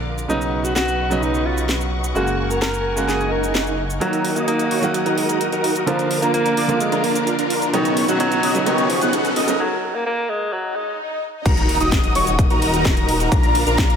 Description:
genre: EDM, festival progressive house.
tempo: 129 BPM.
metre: 4/4.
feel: straight.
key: Eb minor.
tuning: A4 = 442 Hz.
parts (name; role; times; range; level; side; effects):
clear baby grand piano; accompaniment; 0.0-9.6 s; C#3 to Gb4; -24 LUFS; right 4 dB; sidechain pumping.
clear studio string section; sustained chords; 0.0-14.0 s; Bb4 to Eb6; -29 LUFS; left 2 dB; vintage 12-bit sampler grit, sidechain pumping.
detuned saw bass; bass; 0.0-14.0 s; Eb1 to Eb2; -27 LUFS; left 1 dB; sidechain pumping, high-pass filter.
house drum kit; drums; 0.2-14.0 s; cabasa, crash cymbal, hi-hat, ride cymbal, snare drum; -26 LUFS; equal; none.
breathy alto saxophone; melody; 0.3-11.0 s; D#3 to Bb4; -23 LUFS; equal; digital delay.
swell, riser and sub drop; sound effects; 3.3-13.3 s; none; -28 LUFS; left 1 dB; none.
wide unison lead; arpeggios; 4.0-14.0 s; Bb5 to F#6; -25 LUFS; equal; ensemble chorus, cassette tape, sidechain pumping, digital delay.
dense compressed supersaw; riff; 4.0-14.0 s; B3 to F#5; -22 LUFS; equal; sidechain pumping, low-pass filter.
electronic kick drum; drums; 11.5-13.9 s; none; -18 LUFS; left 1 dB; none.
room: light reverb.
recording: high-pass filter.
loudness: -17 LUFS.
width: side -7 dB against mid.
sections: 0.0-4.0 A section; 4.0-11.5 B section; 11.5-14.0 C section.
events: swell 3.3-4.0, 10.7-11.5; build-up 4.0-11.5; filter sweep on analog synth lead 4.0-11.5; break 9.6-11.5; drop 11.5-14.0; impact 11.5-13.3.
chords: 0.3 Badd9; 2.2 Gbadd9; 4.0 Ebm; 5.9 Bb; 7.7 Badd9; 9.6 N.C.; 11.5 Ebm; 13.3 Bb.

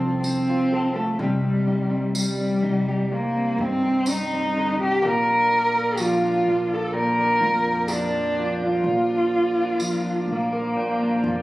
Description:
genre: acoustic folk duo or small band.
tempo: 63 BPM.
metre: 4/4.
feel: straight.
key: Bb major.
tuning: A4 = 443 Hz.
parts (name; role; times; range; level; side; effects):
warm cello; melody; 0.0-11.4 s; G3 to Bb4; -21 LUFS; equal; none.
nylon-string guitar; accompaniment; 0.0-11.4 s; Bb2 to Bb4; -27 LUFS; equal; none.
upright bass; bass; 0.0-11.4 s; Bb1 to G2; -30 LUFS; equal; none.
tambourine; percussion; 0.2-10.0 s; none; -33 LUFS; equal; none.
mellow tonewheel organ; sustained chords; 5.0-11.4 s; Bb4 to D6; -32 LUFS; equal; slow rotary speaker.
room: moderate scoring stage reverb, RT60 1.5 s.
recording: recorded on a phone in the room, studio ambience, compression.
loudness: -20 LUFS.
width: side -18 dB against mid.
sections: 0.0-11.4 A section.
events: none.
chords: 0.0 F; 1.2 Cm; 5.0 Bb.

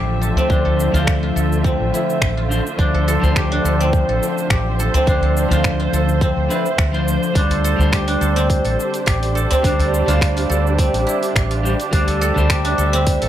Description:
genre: organic downtempo.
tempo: 105 BPM.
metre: 4/4.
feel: swing 53% on 16ths.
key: D minor.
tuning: A4 = 440 Hz.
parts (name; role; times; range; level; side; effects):
clean electric guitar; accompaniment; 0.0-13.3 s; F3 to C5; -24 LUFS; left 4 dB; spring reverb, sidechain pumping, analog delay.
muted studio string section; sustained chords; 0.0-13.3 s; D3 to E5; -25 LUFS; right 3 dB; sidechain pumping.
guzheng; arpeggios; 0.0-13.3 s; C4 to A4; -21 LUFS; right 1 dB; low-pass filter, analog delay.
fretless electric bass; bass; 0.0-13.3 s; A1 to D2; -19 LUFS; equal; sidechain pumping.
deep house drum kit; drums; 0.2-13.3 s; cabasa, finger snaps, hi-hat; -25 LUFS; equal; overdrive.
udu; percussion; 0.4-12.5 s; none; -22 LUFS; equal; none.
electronic kick drum; drums; 0.5-13.2 s; none; -20 LUFS; equal; overdrive.
room: little or no reverb.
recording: dry, gritty hardware recording.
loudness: -15 LUFS.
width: side -11 dB against mid.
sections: 0.0-13.3 A section.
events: none.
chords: 0.0 Dm7; 7.4 Gsus4.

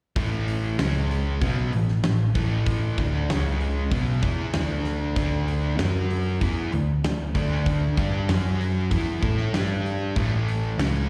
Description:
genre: classic rock.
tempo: 96 BPM.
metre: 4/4.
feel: straight.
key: A mixolydian.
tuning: A4 = 441 Hz.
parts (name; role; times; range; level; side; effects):
crunchy overdriven guitar; riff; 0.2-11.1 s; A2 to A4; -30 LUFS; equal; harmonic tremolo, slapback echo.
sludgy distorted guitar; riff; 0.2-11.1 s; A2 to A4; -36 LUFS; equal; overdrive, slapback echo.
hollow-body short-scale picked electric bass; bass; 0.2-11.1 s; A1 to A2; -28 LUFS; equal; none.
big rock drum kit; drums; 0.2-10.9 s; hi-hat, kick drum, snare drum; -31 LUFS; equal; none.
room: light reverb.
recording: live gig heard through the venue's PA, recital hall reverb.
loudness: -24 LUFS.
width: mono.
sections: 0.2-11.1 A section.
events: none.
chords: 0.2 A5; 0.8 C#5; 1.4 A5; 3.3 C#5; 3.9 Bsus4; 4.5 D5; 5.8 F#5; 6.4 D5; 8.3 F#5; 8.9 Esus4; 9.5 G5; 10.2 A5.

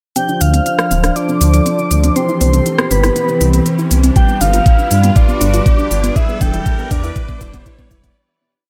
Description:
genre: progressive house.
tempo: 120 BPM.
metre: 4/4.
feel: straight.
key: D dorian.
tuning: A4 = 439 Hz.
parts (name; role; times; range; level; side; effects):
soft octave-layered synth lead; melody; 0.2-7.9 s; B4 to G5; -22 LUFS; equal; chorus, sidechain pumping, digital delay.
airy dreamy lead; second line; 0.2-7.9 s; B5 to G6; -28 LUFS; equal; chorus, sidechain pumping.
evolving wavetable pad; sustained chords; 1.0-8.1 s; E3 to C5; -28 LUFS; equal; none.
soft round pluck; arpeggios; 0.2-8.1 s; B3 to F4; -26 LUFS; equal; chorus, sidechain pumping, digital delay.
soft supersaw; stabs; 0.2-8.1 s; E3 to D5; -23 LUFS; equal; sidechain pumping, low-pass filter.
pop drum kit; drums; 0.2-8.1 s; cabasa, hi-hat, rim click; -23 LUFS; equal; sidechain pumping on hats, sidechain pumping on perc.
riser; sound effects; 2.0-8.2 s; none; -33 LUFS; equal; none.
dark detuned saw bass; bass; 0.4-8.1 s; D1 to G2; -16 LUFS; equal; sidechain pumping.
electronic kick drum; drums; 4.2-8.1 s; none; -15 LUFS; equal; none.
room: light reverb, digital ambience.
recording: none.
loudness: -13 LUFS.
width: mono.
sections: 0.2-8.2 build.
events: build-up 0.2-8.2; filter sweep on synth pluck 0.2-8.2; filter sweep on supersaw synth 0.2-8.2; filter sweep on soft synth lead 0.2-8.2; riser 2.0-8.2; drum fill 4.2-8.2; fade-out 5.5-8.2.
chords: 0.2 Dm7; 2.2 Cmaj7; 4.2 G7; 6.2 Em7.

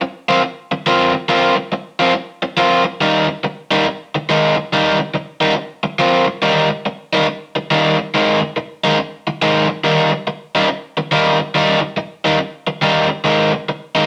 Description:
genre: blues.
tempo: 140 BPM.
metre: 4/4.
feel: swing 64% on 8ths.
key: Eb major.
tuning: A4 = 440 Hz.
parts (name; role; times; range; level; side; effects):
overdriven electric guitar; solo; 0.0-14.1 s; Eb3 to F4; -16 LUFS; equal; none.
room: moderate studio reverb, RT60 0.6 s.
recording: none.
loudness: -17 LUFS.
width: mono.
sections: 0.0-6.4 A section; 6.4-14.1 B section.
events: none.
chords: 0.0 Bbsus2; 3.0 Eb; 3.9 Absus2; 4.7 Eb; 5.6 Bbsus2; 6.4 Eb; 8.1 Absus2; 9.8 Eb; 13.3 Absus2.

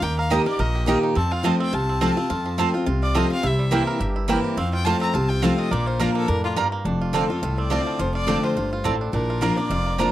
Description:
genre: bluegrass.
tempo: 211 BPM.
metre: 4/4.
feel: swing 55% on 8ths.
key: unclear.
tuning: A4 = 442 Hz.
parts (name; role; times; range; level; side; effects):
bluegrass banjo; melody; 0.0-10.1 s; F3 to Bb4; -30 LUFS; right 4 dB; none.
clear fiddle; melody; 0.0-10.1 s; F4 to Bb5; -28 LUFS; left 2 dB; none.
picked steel-string acoustic guitar; accompaniment; 0.0-10.1 s; F2 to G4; -23 LUFS; left 1 dB; none.
upright bass; bass; 0.0-10.1 s; F1 to F2; -25 LUFS; equal; none.
mandolin; stabs; 0.3-10.1 s; Bb3 to Bb5; -25 LUFS; right 6 dB; none.
room: little or no reverb.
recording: dry, close 1970s-style studio recording.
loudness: -20 LUFS.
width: side -13 dB against mid.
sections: 0.0-6.9 A section; 6.9-10.1 B section.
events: fiddle solo 0.0-6.9.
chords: 0.0 Eb; 1.2 F; 3.4 C7; 4.6 F; 5.7 Bb; 6.9 F6; 9.1 Bb.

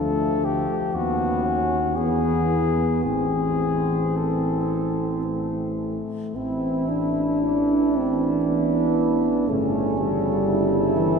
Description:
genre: classical, hymn-like piece for brass band.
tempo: 53-62 BPM.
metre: 3/4.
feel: rubato.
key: A minor.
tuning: A4 = 436 Hz.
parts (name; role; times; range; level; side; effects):
mellow flugelhorn; melody; 0.0-11.2 s; E4 to A4; -27 LUFS; left 7 dB; none.
mellow French horn section; second line; 0.0-11.2 s; A3 to E4; -27 LUFS; right 6 dB; none.
mellow euphonium; accompaniment; 0.0-11.2 s; E3 to D4; -26 LUFS; left 2 dB; none.
warm euphonium; accompaniment; 0.0-11.2 s; C#3 to F3; -29 LUFS; right 4 dB; none.
dark tuba; bass; 0.0-11.2 s; G1 to E2; -27 LUFS; right 1 dB; none.
room: wet cathedral reverb, RT60 4.7 s.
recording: none.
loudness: -20 LUFS.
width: side -5 dB against mid.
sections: 0.0-6.4 A section; 6.4-11.2 A section.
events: none.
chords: 0.0 Dm; 0.9 B/D#; 2.0 E; 3.0 Am; 6.4 A5; 9.5 A7/G.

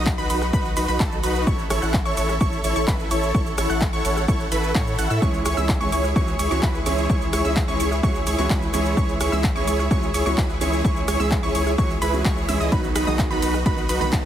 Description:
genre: EDM, festival progressive house.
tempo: 128 BPM.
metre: 4/4.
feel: straight.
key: C# minor.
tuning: A4 = 440 Hz.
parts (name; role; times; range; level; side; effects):
supersaw pad; sustained chords; 0.0-14.3 s; F#4 to C#6; -32 LUFS; right 1 dB; sidechain pumping.
wide unison pluck; arpeggios; 0.0-14.3 s; A5 to F#6; -29 LUFS; equal; cassette tape, sidechain pumping, tape echo.
supersaw chords; riff; 0.0-14.3 s; D#4 to F#5; -26 LUFS; right 1 dB; lush chorus, sidechain pumping, tape echo.
saturated sub bass; bass; 0.0-14.3 s; A1 to A2; -26 LUFS; equal; sidechain pumping.
big-room dance drum kit; drums; 0.1-14.2 s; handclaps, hi-hat, ride cymbal, rim click, shaker; -30 LUFS; equal; none.
electronic kick drum; drums; 0.1-14.2 s; none; -23 LUFS; equal; overdrive.
clear concert grand piano; accompaniment; 5.2-14.2 s; D#3 to G#4; -28 LUFS; right 3 dB; sidechain pumping, tape echo.
room: light reverb.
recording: heavily compressed radio sound, multiband compression.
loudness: -19 LUFS.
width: side -10 dB against mid.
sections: 0.0-14.3 A section.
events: none.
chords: 0.0 B; 1.5 A; 5.2 C#m; 12.7 B.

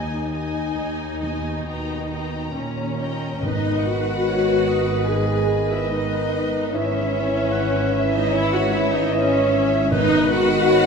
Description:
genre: classical, slow romantic movement for symphony orchestra.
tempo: 67-77 BPM.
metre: 4/4.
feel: rubato.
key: G# minor.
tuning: A4 = 440 Hz.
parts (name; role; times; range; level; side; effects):
warm studio violin section; melody; 0.0-10.9 s; B4 to A#5; -31 LUFS; left 2 dB; none.
rich chamber violin section; second line; 0.0-10.9 s; C#5 to G#5; -30 LUFS; left 2 dB; none.
rich studio viola section; accompaniment; 0.0-10.9 s; C#4 to G#4; -23 LUFS; left 1 dB; none.
rich chamber cello section; bass; 0.0-10.9 s; D#2 to B2; -29 LUFS; right 3 dB; none.
warm chamber double bass section; bass; 0.0-10.9 s; G#1 to D#2; -29 LUFS; right 2 dB; none.
flute section; second line; 3.4-10.9 s; B4 to C#5; -28 LUFS; right 2 dB; none.
warm clarinet; second line; 3.4-10.9 s; B4 to F#5; -30 LUFS; left 1 dB; none.
warm bassoon; accompaniment; 3.4-10.9 s; D#3 to E3; -27 LUFS; right 2 dB; none.
dark French horn section; sustained chords; 3.4-10.9 s; B3 to E4; -27 LUFS; left 3 dB; none.
timpani; percussion; 3.4-10.9 s; G#2; -29 LUFS; equal; none.
room: wet scoring stage reverb, RT60 1.8 s.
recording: minimal, uncompressed stereo recording.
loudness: -19 LUFS.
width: side -5 dB against mid.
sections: 0.0-3.4 A section; 3.4-10.9 B section.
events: none.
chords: 0.0 D#sus4; 1.7 D#; 3.4 G#m; 6.7 C#m/G#; 9.9 G#m.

